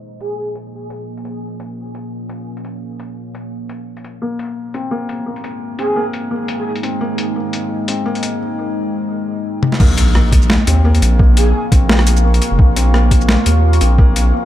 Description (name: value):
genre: half-time drum and bass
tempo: 172 BPM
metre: 4/4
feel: swing 56% on 16ths, half-time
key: Bb minor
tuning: A4 = 444 Hz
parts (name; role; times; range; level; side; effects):
- deep dark ambient pad; sustained chords; 0.0-14.4 s; Ab3 to Db6; -24 LUFS; right 1 dB; chorus, built-in reverb, sidechain pumping
- breathy flute-like synth lead; melody; 0.2-0.5, 5.8-6.7, 11.4-11.6 s; Ab4; -26 LUFS; right 1 dB; ensemble chorus, dub echo
- boom bap sampler-style drum kit; drums; 0.2-14.2 s; crash cymbal, hi-hat, rim click, shaker, snare drum, toms; -19 LUFS; left 1 dB; overdrive
- felt-muted upright piano; arpeggios; 4.2-14.4 s; Bb3 to C4; -22 LUFS; left 2 dB; dub echo
- saturated sub bass; bass; 9.8-14.3 s; F1 to Eb2; -12 LUFS; equal; none
- electronic kick drum; drums; 9.8-14.1 s; none; -12 LUFS; equal; overdrive
- impact; sound effects; 9.8-11.2 s; none; -22 LUFS; equal; none
room: little or no reverb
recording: low-pass filter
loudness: -12 LUFS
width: side -13 dB against mid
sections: 0.0-9.8 A section; 9.8-14.4 B section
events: filter sweep on ambient pad 0.0-9.8; filter sweep 0.0-9.8; drum fill 9.6; drop 9.8-14.4; impact 9.8-11.2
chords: 0.0 Bbm; 4.2 Ab; 9.8 Bbm